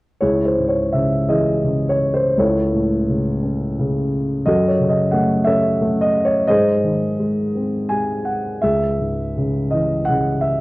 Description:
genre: classical, lyrical solo piano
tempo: 81-92 BPM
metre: 3/4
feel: rubato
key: C# harmonic minor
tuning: A4 = 440 Hz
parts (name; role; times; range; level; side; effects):
- dark grand piano; solo; 0.2-10.6 s; C#2 to G#5; -16 LUFS; equal; none
room: moderate recital hall reverb, RT60 1.4 s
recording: worn, warbling old tape, cassette tape, warbly pitch drift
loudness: -16 LUFS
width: side -20 dB against mid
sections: 0.2-10.6 A section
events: none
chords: 0.2 C#m; 2.4 A/C#; 4.5 F#m; 6.5 G#; 8.6 C#m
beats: | 0.21 0.93 1.64 | 2.37 3.09 3.78 | 4.46 5.12 5.79 | 6.48 7.17 7.89 | 8.62 9.35 10.07

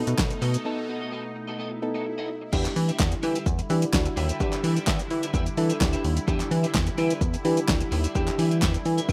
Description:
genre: dance-pop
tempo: 128 BPM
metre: 4/4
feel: straight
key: E minor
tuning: A4 = 440 Hz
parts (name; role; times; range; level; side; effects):
- soft round pluck; accompaniment; 0.0-8.8 s; B3 to A4; -33 LUFS; equal; chorus, sidechain pumping
- sweeping resonant pad; sustained chords; 0.0-9.1 s; B2 to E4; -38 LUFS; equal; chorus, sidechain pumping
- chorused synth bass; bass; 0.0-9.1 s; B1 to E3; -27 LUFS; equal; sidechain pumping
- electric guitar at the edge of break-up; riff; 0.1-9.1 s; B3 to E5; -38 LUFS; equal; ensemble chorus
- deep house drum kit; drums; 0.1-9.1 s; crash cymbal, handclaps, hi-hat, kick drum, shaker, snare drum; -29 LUFS; equal; none
- swell; sound effects; 1.7-2.5 s; none; -45 LUFS; equal; none
room: digital ambience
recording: rough home demo mix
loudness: -25 LUFS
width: mono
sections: 0.0-2.5 A section; 2.5-9.1 B section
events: break 0.7-2.5; swell 1.7-2.5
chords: 0.0 B7; 2.5 Em7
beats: 0.18 | 0.65 1.12 1.59 2.06 | 2.53 3.00 3.46 3.93 | 4.40 4.87 5.34 5.81 | 6.28 6.75 7.21 7.68 | 8.15 8.62 9.09

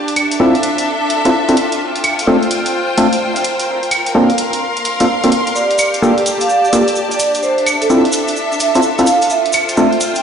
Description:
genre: UK garage, two-step garage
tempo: 128 BPM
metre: 4/4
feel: swing 64% on 16ths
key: unclear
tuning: A4 = 444 Hz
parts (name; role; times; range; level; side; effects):
- clear studio string section; texture; 0.0-10.2 s; D4 to C6; -17 LUFS; left 1 dB; none
- electronic hi-hat and claves; drums; 0.1-10.2 s; none; -20 LUFS; right 1 dB; none
- percussive organ stab; stabs; 0.4-9.9 s; A3 to A4; -15 LUFS; equal; chorus, cassette tape, dub echo
- vibraphone with medium mallets; melody; 5.6-10.2 s; A4 to G5; -16 LUFS; right 3 dB; dub echo
- tube shaker; percussion; 5.6-10.2 s; none; -23 LUFS; right 1 dB; none
room: wet lush hall reverb, RT60 1.6 s, studio reverb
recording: played on a big sound system in a bare room, large studio reverb, nothing above 10.5 kHz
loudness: -12 LUFS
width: side -7 dB against mid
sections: 0.0-10.2 A section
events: none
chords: 0.0 Dm9; 1.6 F6; 3.4 Bbmaj9; 7.2 Dm9; 9.1 F6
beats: 0.40 0.87 1.34 | 1.80 2.27 2.74 3.21 | 3.68 4.15 4.62 5.09 | 5.55 6.02 6.49 6.96 | 7.43 7.90 8.37 8.84 | 9.30 9.77

